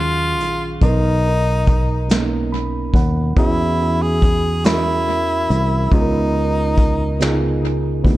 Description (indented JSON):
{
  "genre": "slow six-eight R&B",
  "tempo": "47 BPM (dotted quarters)",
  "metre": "6/8",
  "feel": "straight",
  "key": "unclear",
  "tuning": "A4 = 440 Hz",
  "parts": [
    { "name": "breathy tenor saxophone", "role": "melody", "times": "0.0-7.6 s", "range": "D#4 to G#4", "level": "-21 LUFS", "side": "equal", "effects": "analog delay" },
    { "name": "bright reed electric piano", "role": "accompaniment", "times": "0.0-8.2 s", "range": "B2 to B5", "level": "-22 LUFS", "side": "right 3 dB", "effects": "analog delay" },
    { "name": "fingered electric bass", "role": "bass", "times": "0.0-8.2 s", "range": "Bb1 to E2", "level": "-20 LUFS", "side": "equal", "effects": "none" },
    { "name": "vintage brush drum kit", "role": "drums", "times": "0.4-8.2 s", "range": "hi-hat, kick drum, snare drum", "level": "-18 LUFS", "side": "equal", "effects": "vintage 12-bit sampler grit" }
  ],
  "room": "light reverb",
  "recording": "echo-heavy mix",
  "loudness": "-15 LUFS",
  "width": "side -16 dB against mid",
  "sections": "0.0-8.2 A section",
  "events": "reed electric piano fill 2.1-3.4",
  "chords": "0.0 Ebm9; 0.8 Bmaj7; 3.4 E69; 5.9 Db13",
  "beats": "| 0.81 2.09 | 3.37 4.64 | 5.92 7.20"
}